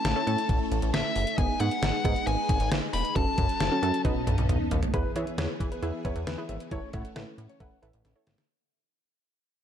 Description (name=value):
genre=synth-pop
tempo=135 BPM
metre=4/4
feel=straight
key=unclear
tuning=A4 = 440 Hz
part: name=dark smooth lead guitar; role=melody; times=0.0-4.0 s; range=E5 to B5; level=-30 LUFS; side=left 3 dB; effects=overdrive, digital delay
part: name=warbly dusty pluck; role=accompaniment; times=0.0-8.4 s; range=B3 to C#5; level=-34 LUFS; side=right 4 dB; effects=chorus
part: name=string machine, violins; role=sustained chords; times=0.0-8.5 s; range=E3 to B4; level=-34 LUFS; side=equal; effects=ensemble chorus
part: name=chorused synth bass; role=bass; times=0.0-8.4 s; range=E1 to E3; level=-30 LUFS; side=equal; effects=none
part: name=detuned 8-bit digital drum machine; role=drums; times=0.0-8.5 s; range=hi-hat, kick drum, snare drum, toms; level=-29 LUFS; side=equal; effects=none
part: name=warm grand piano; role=second line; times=4.9-7.9 s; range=B4 to F#5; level=-40 LUFS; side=left 3 dB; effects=digital delay
room=light reverb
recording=dark, warm production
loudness=-25 LUFS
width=side -9 dB against mid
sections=0.0-4.9 A section; 4.9-8.5 B section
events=drum fill 4.0-4.9, 8.0-8.5; fade-out 4.9-8.5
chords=0.0 A; 1.4 G#m; 3.2 F#m; 4.0 Badd9; 4.9 E; 6.7 A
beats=0.05 0.49 0.94 | 1.38 1.82 2.27 2.71 | 3.16 3.60 4.05 4.49 | 4.94 5.38 5.83 6.27 | 6.71 7.16 7.60 8.05